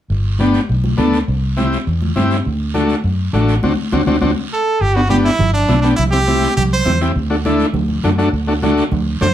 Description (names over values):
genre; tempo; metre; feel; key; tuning
latin, cumbia; 204 BPM; 4/4; straight; G major; A4 = 442 Hz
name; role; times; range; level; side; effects
vintage muted fingered electric bass; bass; 0.1-9.3 s; G1 to G2; -17 LUFS; equal; none
guiro; percussion; 0.1-9.3 s; none; -32 LUFS; right 6 dB; none
combo organ; accompaniment; 0.4-9.3 s; A3 to A4; -17 LUFS; left 2 dB; none
congas; percussion; 0.4-9.3 s; none; -22 LUFS; right 1 dB; none
brilliant trumpet; melody; 4.5-7.0, 9.2-9.3 s; D4 to C5; -17 LUFS; right 2 dB; none
room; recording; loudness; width
wet studio reverb, RT60 0.5 s; heard from further back in the room; -13 LUFS; side -11 dB against mid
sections
0.1-4.8 A section; 4.8-9.3 B section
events
band accent 3.6-4.8; drum fill 3.9-4.8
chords
0.1 G; 1.3 C; 2.5 D7; 4.8 G; 6.0 C; 7.2 D